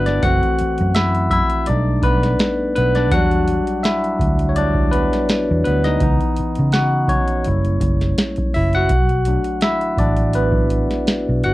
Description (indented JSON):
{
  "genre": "R&B, neo-soul",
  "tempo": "83 BPM",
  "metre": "4/4",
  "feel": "swing 54% on 16ths",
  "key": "unclear",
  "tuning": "A4 = 440 Hz",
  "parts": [
    { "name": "barky tine electric piano", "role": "accompaniment", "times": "0.0-11.5 s", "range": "E3 to F#5", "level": "-18 LUFS", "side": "left 1 dB", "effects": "phaser" },
    { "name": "vintage muted fingered electric bass", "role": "bass", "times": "0.0-11.5 s", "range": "F#1 to C#3", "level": "-19 LUFS", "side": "equal", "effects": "none" },
    { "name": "booming analog drum machine", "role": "drums", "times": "0.1-11.5 s", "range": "hi-hat, kick drum, snare drum", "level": "-21 LUFS", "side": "equal", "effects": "none" }
  ],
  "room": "light reverb",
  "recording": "worn, warbling old tape, cassette tape, warbly pitch drift",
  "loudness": "-15 LUFS",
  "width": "side -17 dB against mid",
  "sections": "0.0-11.5 A section",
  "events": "tine electric piano solo 0.0-11.5",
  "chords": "0.2 F#m7b5; 1.7 B7alt; 3.1 Em7; 6.0 C#m9; 7.5 F#7b9; 8.9 Bm7"
}